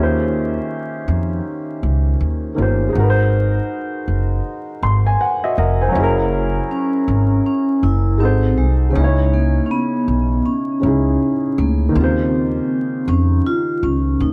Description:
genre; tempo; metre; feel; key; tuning
lo-fi hip hop; 80 BPM; 4/4; swing 62% on 16ths; unclear; A4 = 435 Hz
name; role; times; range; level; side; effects
warm upright piano; accompaniment; 0.0-14.3 s; C#3 to B#5; -23 LUFS; equal; cassette tape, low-pass filter
upright bass; bass; 0.0-14.3 s; E#1 to E#2; -20 LUFS; equal; none
vibraphone with soft mallets; melody; 6.7-14.3 s; G#3 to E#4; -21 LUFS; equal; none
room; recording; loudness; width
light reverb, small room ambience; vinyl crackle; -18 LUFS; mono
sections
0.0-6.0 A section; 6.0-14.3 B section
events
filter sweep on upright piano 0.0-6.0; upright piano fill 4.5-6.0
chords
0.0 D#13; 3.0 G#9; 6.0 F#9; 8.2 G#7b9; 9.0 C#m9; 12.0 D#13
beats
0.70 1.45 2.20 | 2.95 3.70 4.45 5.20 | 5.95 6.70 7.45 8.20 | 8.95 9.70 10.45 11.20 | 11.95 12.70 13.45 14.20

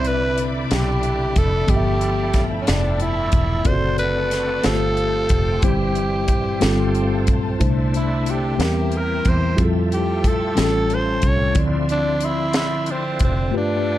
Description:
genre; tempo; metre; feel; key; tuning
slow gospel; 61 BPM (dotted quarters); 6/8; straight; C major; A4 = 440 Hz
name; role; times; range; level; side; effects
growling tenor saxophone; melody; 0.0-14.0 s; C4 to C#5; -23 LUFS; right 1 dB; none
mellow tine electric piano; accompaniment; 0.0-14.0 s; G2 to B5; -23 LUFS; left 2 dB; medium stereo tremolo
bright tonewheel organ; sustained chords; 0.0-14.0 s; D3 to E5; -31 LUFS; right 2 dB; slow rotary speaker, chorus vibrato
dark studio string section; sustained chords; 0.0-14.0 s; C#4 to D6; -34 LUFS; left 3 dB; none
fingered electric bass; bass; 0.0-13.5 s; E1 to F2; -23 LUFS; equal; none
crisp fusion drum kit; drums; 0.0-13.4 s; hi-hat, kick drum, snare drum; -22 LUFS; equal; none
room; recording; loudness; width
light reverb, small room ambience; dark, warm production; -17 LUFS; side -14 dB against mid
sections
0.0-14.0 A section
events
none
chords
0.0 Cmaj9; 1.7 G13; 3.7 D7/F#; 4.6 G9sus4; 5.6 C/G; 6.6 G9sus4; 7.6 C69; 8.6 C7/E; 9.6 Fmaj9; 10.6 A7alt; 11.6 Dm9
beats
0.70 | 1.69 2.67 | 3.66 4.64 | 5.63 6.62 | 7.61 8.59 | 9.58 10.57 | 11.56 12.55 | 13.53

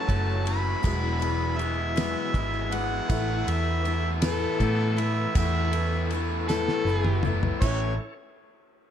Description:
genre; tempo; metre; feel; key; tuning
folk rock and heartland rock; 53 BPM (dotted quarters); 6/8; straight; A major; A4 = 440 Hz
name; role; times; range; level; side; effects
overdriven harmonica; melody; 0.0-8.0 s; A4 to B5; -31 LUFS; equal; slapback echo
dark grand piano; accompaniment; 0.0-8.0 s; E4 to F#5; -43 LUFS; right 6 dB; none
picked steel-string acoustic guitar; accompaniment; 0.0-7.9 s; E2 to F#4; -33 LUFS; left 10 dB; none
bright tonewheel organ; sustained chords; 0.0-8.1 s; E4 to C#5; -40 LUFS; right 1 dB; none
raw garage guitar; riff; 0.0-7.9 s; E2 to F#4; -32 LUFS; right 1 dB; overdrive
hollow-body short-scale picked electric bass; bass; 0.1-8.0 s; E1 to A2; -27 LUFS; equal; none
damped 70s drum kit; drums; 0.1-7.8 s; crash cymbal, kick drum, ride cymbal, snare drum, toms; -31 LUFS; equal; none
tambourine; percussion; 0.1-8.0 s; none; -45 LUFS; right 11 dB; none
room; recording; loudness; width
little or no reverb; dark, warm production; -23 LUFS; side -9 dB against mid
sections
0.0-7.6 A section; 7.6-8.9 B section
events
drum fill 6.5-7.6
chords
0.0 F#m7; 0.8 Eadd9; 3.1 Asus2; 7.6 A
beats
| 0.83 1.96 | 3.10 4.23 | 5.36 6.49 | 7.62

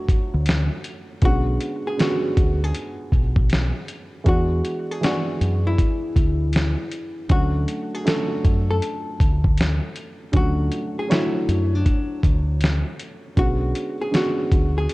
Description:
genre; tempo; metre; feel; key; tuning
lo-fi hip hop; 79 BPM; 4/4; swing 65% on 16ths; B dorian; A4 = 440 Hz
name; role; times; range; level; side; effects
archtop guitar, miked and amplified; melody; 0.0-14.9 s; D4 to A4; -28 LUFS; left 2 dB; analog delay
dark upright piano; accompaniment; 0.0-14.9 s; D3 to C#5; -27 LUFS; right 1 dB; cassette tape
dusty soul sampler-style drum kit; drums; 0.1-14.9 s; hi-hat, kick drum, snare drum; -21 LUFS; equal; vintage 12-bit sampler grit
deep dub fingered electric bass; bass; 0.3-14.9 s; B1 to F#2; -21 LUFS; equal; none
room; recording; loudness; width
little or no reverb; worn, warbling old tape, cassette tape, warbly pitch drift; -19 LUFS; side -20 dB against mid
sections
0.0-1.2 A section; 1.2-14.9 B section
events
none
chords
0.0 Dmaj7; 1.2 Bm69; 4.3 E9; 7.3 Dmaj7; 13.4 Bm69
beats
0.46 | 1.22 1.98 2.74 3.50 | 4.26 5.02 5.78 6.54 | 7.30 8.06 8.82 9.57 | 10.34 11.09 11.85 12.61 | 13.37 14.13 14.89

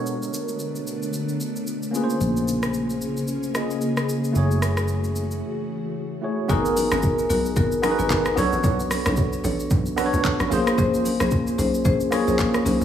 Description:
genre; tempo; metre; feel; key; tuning
amapiano; 112 BPM; 4/4; swing 58% on 16ths; unclear; A4 = 440 Hz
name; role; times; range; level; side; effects
tine electric piano; accompaniment; 0.0-12.8 s; A3 to D#5; -25 LUFS; equal; medium stereo tremolo
ethereal airy pad; sustained chords; 0.0-6.5 s; C#3 to G#4; -29 LUFS; left 1 dB; ensemble chorus, built-in reverb
smooth R&B drum kit; drums; 0.1-12.8 s; handclaps, hi-hat, kick drum, rim click, shaker; -27 LUFS; equal; none
fingered electric bass; bass; 2.2-5.4 s; F#1 to A#1; -25 LUFS; equal; none
marimba with medium mallets; stabs; 6.5-12.8 s; B3 to C#5; -26 LUFS; left 3 dB; digital delay
tight log drum bass; bass; 6.5-12.8 s; G#1 to C#2; -27 LUFS; equal; none
congas and bongos; percussion; 6.5-12.8 s; none; -31 LUFS; right 5 dB; none
room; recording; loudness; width
light reverb, digital ambience; studio reverb; -20 LUFS; side -10 dB against mid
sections
0.0-6.5 A section; 6.5-12.8 B section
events
break 5.4-6.5; drop 6.5-12.8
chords
0.0 Bm9; 1.9 A#m9; 4.4 F#m9; 6.5 G#m9; 8.4 Bm9; 10.5 A#m9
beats
| 0.07 0.60 1.14 1.67 | 2.21 2.75 3.28 3.82 | 4.35 4.89 5.42 5.96 | 6.50 7.03 7.57 8.10 | 8.64 9.17 9.71 10.24 | 10.78 11.32 11.85 12.39

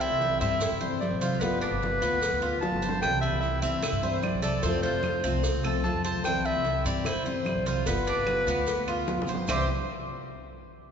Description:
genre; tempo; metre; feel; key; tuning
latin, Cuban son and guajira; 149 BPM; 4/4; straight; C major; A4 = 440 Hz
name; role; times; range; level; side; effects
clear clarinet; melody; 0.0-9.7 s; B4 to A5; -29 LUFS; equal; none
fingerpicked steel-string acoustic guitar; accompaniment; 0.0-9.7 s; C3 to F4; -34 LUFS; left 4 dB; none
Cuban tres; arpeggios; 0.0-9.7 s; B3 to C5; -34 LUFS; right 2 dB; none
upright bass; bass; 0.0-9.7 s; G1 to G2; -32 LUFS; right 1 dB; none
congas; percussion; 0.0-9.6 s; none; -37 LUFS; right 1 dB; none
maracas; percussion; 0.0-9.6 s; none; -43 LUFS; right 4 dB; none
cowbell and bongos; percussion; 0.2-9.6 s; none; -38 LUFS; left 2 dB; none
claves; percussion; 3.0-9.6 s; none; -42 LUFS; right 3 dB; none
room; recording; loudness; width
wet church reverb, RT60 3.4 s; recorded in a church or concert hall, nothing above 7.7 kHz; -25 LUFS; side -7 dB against mid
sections
0.0-9.5 A section; 9.5-10.9 B section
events
drum fill 2.6-3.0, 9.1-9.5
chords
0.0 C; 1.4 G7; 3.0 C; 4.6 F; 6.2 C; 7.9 G7; 9.5 C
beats
0.21 0.61 1.01 | 1.41 1.82 2.22 2.62 | 3.02 3.42 3.83 4.23 | 4.63 5.04 5.44 5.84 | 6.25 6.65 7.06 7.46 | 7.87 8.27 8.67 9.08 | 9.48

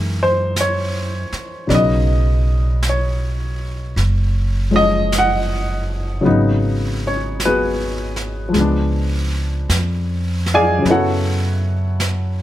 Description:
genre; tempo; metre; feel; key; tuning
jazz ballad; 52 BPM; 4/4; swing 66% on 8ths; unclear; A4 = 441 Hz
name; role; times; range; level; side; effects
warm baby grand piano; accompaniment; 0.0-12.4 s; Db3 to Ab5; -18 LUFS; left 1 dB; none
upright bass; bass; 0.0-12.4 s; Gb1 to Gb2; -19 LUFS; equal; none
jazz brush drum kit; drums; 0.6-12.4 s; brushed snare drum, hi-hat, snare drum; -28 LUFS; right 1 dB; none
room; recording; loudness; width
light reverb; none; -16 LUFS; side -13 dB against mid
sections
0.0-12.4 A section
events
none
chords
0.0 Gb13; 1.7 Cb69; 6.3 Abm7; 8.5 Db7b9; 10.8 Gbm7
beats
0.55 | 1.69 2.83 3.97 5.11 | 6.25 7.39 8.54 9.69 | 10.85 11.99

